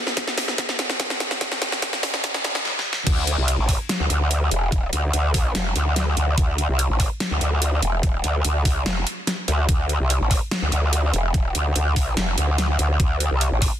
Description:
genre	heavy wobble dubstep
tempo	145 BPM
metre	4/4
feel	half-time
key	D minor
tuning	A4 = 440 Hz
part	dubstep drum kit	drums	0.1-13.7 s	crash cymbal, hi-hat, snare drum	-24 LUFS	equal	studio reverb
part	electronic kick drum	drums	0.2-13.7 s	none	-22 LUFS	equal	studio reverb
part	growl bass	bass	3.1-13.7 s	E1 to D2	-20 LUFS	equal	chorus, overdrive
room	light reverb, digital ambience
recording	dense, heavily limited modern master, high-pass filter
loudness	-19 LUFS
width	side -10 dB against mid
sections	0.0-3.1 A section; 3.1-13.8 B section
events	build-up 0.0-3.1; drum fill 0.0-2.7, 2.7-3.1; drop 3.1-13.8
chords	none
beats	0.17 0.58 1.00 | 1.41 1.82 2.24 2.65 | 3.07 3.48 3.89 4.31 | 4.72 5.13 5.55 5.96 | 6.38 6.79 7.20 7.62 | 8.03 8.45 8.86 9.27 | 9.69 10.10 10.52 10.93 | 11.34 11.76 12.17 12.58 | 13.00 13.41

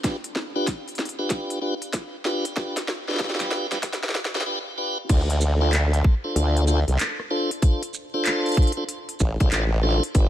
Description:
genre	glitch hop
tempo	95 BPM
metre	4/4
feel	swing 64% on 16ths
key	D dorian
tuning	A4 = 440 Hz
part	tonewheel organ	stabs	0.0-10.3 s	D4 to C5	-27 LUFS	equal	overdrive, slow rotary speaker, sidechain pumping, tape echo
part	drum and bass drum kit	drums	0.0-10.3 s	crash cymbal, handclaps, hi-hat, rim click, shaker, snare drum	-28 LUFS	equal	none
part	electronic kick drum	drums	0.0-10.3 s	none	-19 LUFS	equal	none
part	formant-sweep wobble bass	bass	5.1-10.3 s	G1 to D2	-20 LUFS	equal	chorus
room	little or no reverb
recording	vinyl crackle, high-pass filter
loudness	-21 LUFS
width	side -12 dB against mid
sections	0.0-5.1 A section; 5.1-10.3 B section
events	build-up 0.0-5.1; drum fill 0.0-4.5; filter sweep 0.0-5.1; drop 5.1-10.3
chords	0.0 G7; 5.1 Dm7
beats	| 0.04 0.67 1.30 1.94 | 2.57 3.20 3.83 4.46 | 5.09 5.73 6.36 6.99 | 7.62 8.25 8.88 9.52 | 10.15

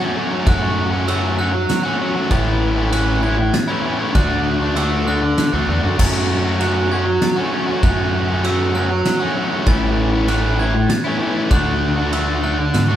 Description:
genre	post-rock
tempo	98 BPM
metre	3/4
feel	straight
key	unclear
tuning	A4 = 438 Hz
part	glockenspiel with brass mallets	arpeggios	0.0-13.0 s	E6 to A6	-26 LUFS	right 2 dB	none
part	distorted electric guitar	riff	0.0-13.0 s	A2 to F#4	-18 LUFS	equal	overdrive
part	growling fingered electric bass	bass	0.5-13.0 s	A1 to G#2	-21 LUFS	equal	overdrive
part	oversized low-tuned drum kit	drums	0.5-12.9 s	crash cymbal, kick drum, ride cymbal, snare drum	-22 LUFS	equal	none
room	light reverb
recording	band playing live in one room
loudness	-15 LUFS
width	side -11 dB against mid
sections	0.0-13.0 A section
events	none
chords	0.0 F#m; 2.3 A; 4.2 D; 6.0 F#m; 9.7 A; 11.5 D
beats	| 0.47 1.08 1.69 | 2.31 2.92 3.54 | 4.15 4.76 5.38 | 5.99 6.60 7.22 | 7.83 8.44 9.05 | 9.67 10.28 10.89 | 11.51 12.12 12.74

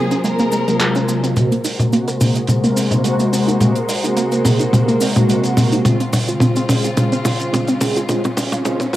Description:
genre	nu-disco, nu disco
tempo	107 BPM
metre	4/4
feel	swing 54% on 16ths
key	unclear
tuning	A4 = 439 Hz
part	warm symphonic violin section	melody	0.0-1.0 s	Ab4 to Bb4	-24 LUFS	left 1 dB	cassette tape, tape echo
part	mellow synth brass	accompaniment	0.0-8.8 s	C3 to Bb4	-19 LUFS	equal	chorus, vintage 12-bit sampler grit, cassette tape, analog delay
part	rich symphonic string section	sustained chords	0.0-9.0 s	Db3 to C5	-24 LUFS	left 1 dB	low-pass filter, cassette tape
part	analog pluck	arpeggios	0.0-9.0 s	Ab3 to F4	-21 LUFS	right 1 dB	chorus, cassette tape, tape echo
part	damped 70s drum kit	drums	0.1-9.0 s	handclaps, hi-hat, shaker, toms	-18 LUFS	equal	low-pass filter on hats, small room ambience, low-pass filter on toms, low-pass filter on snare, low-pass filter on perc, low-pass filter on room
part	cabasa	percussion	0.1-9.0 s	none	-33 LUFS	left 4 dB	none
room	moderate spring reverb, RT60 2.6 s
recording	home recording on cassette, high-pass filter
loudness	-14 LUFS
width	side -14 dB against mid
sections	0.0-1.4 A section; 1.4-9.0 B section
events	build-up 1.4-9.0; drum fill 1.4-9.0; filter sweep on string section 1.4-9.0; filter sweep on synth arpeggio sound 1.4-9.0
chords	0.0 Gbmaj9#11; 1.4 Ab9; 5.9 Dbmaj7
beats	0.24 0.80 | 1.36 1.93 2.49 3.05 | 3.61 4.17 4.73 5.29 | 5.85 6.41 6.97 7.53 | 8.09 8.65

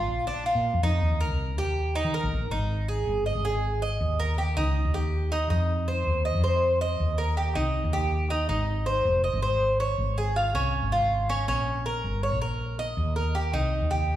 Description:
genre	latin, Cuban son and guajira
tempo	160 BPM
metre	4/4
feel	straight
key	Ab major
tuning	A4 = 440 Hz
part	Cuban tres	arpeggios	0.0-14.2 s	Db4 to Eb5	-27 LUFS	right 1 dB	none
part	woody fretless electric bass	bass	0.0-14.2 s	F1 to Eb3	-27 LUFS	equal	none
room	wet recital hall reverb, RT60 1.4 s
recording	recorded in a church or concert hall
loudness	-24 LUFS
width	side -12 dB against mid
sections	0.0-2.5 A section; 2.5-14.2 B section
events	none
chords	0.0 Bb; 1.0 Eb; 2.5 Ab5; 4.0 Eb7; 5.5 F5; 7.0 Eb; 8.5 Ab6; 10.0 Dbmaj7/Ab; 11.5 Bbm; 13.0 Eb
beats	0.27 0.65 | 1.02 1.39 1.76 2.14 | 2.51 2.88 3.26 3.63 | 4.01 4.38 4.75 5.13 | 5.50 5.88 6.25 6.62 | 7.00 7.37 7.74 8.12 | 8.49 8.87 9.24 9.61 | 9.99 10.36 10.74 11.11 | 11.48 11.86 12.23 12.60 | 12.98 13.35 13.72 14.10

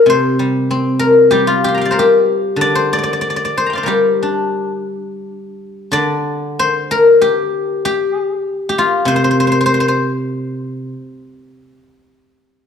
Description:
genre	chinese traditional, Chinese solo plucked strings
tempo	95 BPM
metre	4/4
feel	rubato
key	G yu mode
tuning	A4 = 441 Hz
part	guzheng	solo	0.0-11.9 s	C3 to C6	-13 LUFS	left 2 dB	none
room	moderate recital hall reverb, RT60 1.7 s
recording	none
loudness	-12 LUFS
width	side -7 dB against mid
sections	0.0-5.3 A section; 5.3-12.7 B section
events	none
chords	none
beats	| 0.08 0.70 1.32 1.96 | 2.59 3.21 3.88 4.58 | 5.27 5.93 6.58 7.21 | 7.83 8.45 9.07 9.69 | 10.31 10.92 11.55

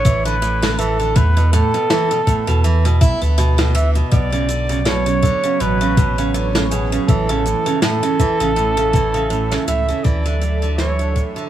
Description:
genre	folktronica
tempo	81 BPM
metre	4/4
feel	swing 56% on 16ths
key	B minor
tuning	A4 = 440 Hz
part	clear flugelhorn	melody	0.0-11.2 s	G#4 to E5	-20 LUFS	right 1 dB	tape echo
part	picked steel-string acoustic guitar	arpeggios	0.0-11.5 s	A2 to E4	-21 LUFS	right 2 dB	tape echo
part	warm sub bass	bass	0.0-11.2 s	A1 to E2	-18 LUFS	equal	none
part	cabasa and snare drum	drums	0.1-11.5 s	none	-24 LUFS	equal	none
part	electronic kick drum	drums	0.1-11.3 s	none	-15 LUFS	equal	none
part	warm analog pad	sustained chords	4.1-11.5 s	E3 to E5	-25 LUFS	right 4 dB	chorus
room	light reverb, studio reverb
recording	none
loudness	-14 LUFS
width	side -12 dB against mid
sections	0.0-11.5 A section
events	fade-out 8.1-11.5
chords	0.0 Dsus2; 1.2 Esus4; 4.1 Bmadd9; 7.1 A; 10.0 Dadd9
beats	0.42 | 1.16 1.90 2.64 3.38 | 4.12 4.86 5.60 6.34 | 7.08 7.82 8.56 9.30 | 10.05 10.79

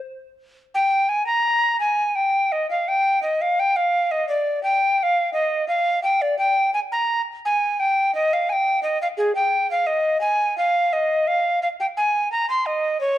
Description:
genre	classical, baroque-style fantasia for unaccompanied recorder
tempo	86 BPM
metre	4/4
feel	rubato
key	unclear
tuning	A4 = 440 Hz
part	mellow tenor recorder	solo	0.7-13.2 s	Ab4 to C6	-18 LUFS	equal	none
room	moderate recital hall reverb, RT60 1.5 s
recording	dark, warm production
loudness	-18 LUFS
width	side -13 dB against mid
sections	0.7-13.2 A section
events	none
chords	none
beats	| 0.73 1.45 2.16 2.87 | 3.57 4.28 4.98 5.68 | 6.38 7.09 7.80 8.49 | 9.18 9.88 10.58 11.28 | 11.96 12.66

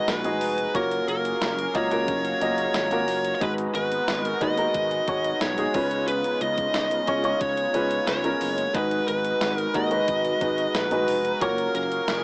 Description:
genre	1980s-style pop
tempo	90 BPM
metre	4/4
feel	straight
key	G# dorian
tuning	A4 = 440 Hz
part	fuzz lead guitar	melody	0.0-12.2 s	A#4 to D#5	-25 LUFS	equal	distortion, cassette tape
part	clear grand piano	accompaniment	0.0-12.2 s	G#2 to D#5	-26 LUFS	equal	none
part	chorused pulse-width pad	sustained chords	0.0-12.2 s	C#3 to A#5	-32 LUFS	equal	none
part	sustaining fretless electric bass	bass	0.1-12.2 s	E#1 to D#2	-34 LUFS	equal	ensemble chorus
part	clean 12-bit digital drum machine	drums	0.1-12.2 s	hi-hat, kick drum, snare drum, tambourine	-30 LUFS	equal	cassette tape
room	moderate booth ambience, RT60 0.2 s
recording	home recording on cassette, small speaker sound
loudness	-22 LUFS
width	side -37 dB against mid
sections	0.0-12.2 A section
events	none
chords	0.0 G#m7; 0.7 F#maj7; 3.4 G#m7; 5.7 C#7; 8.7 G#m7; 11.4 F#maj7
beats	0.08 | 0.75 1.42 2.08 2.75 | 3.42 4.08 4.75 5.42 | 6.08 6.75 7.42 8.08 | 8.75 9.41 10.08 10.75 | 11.41 12.08

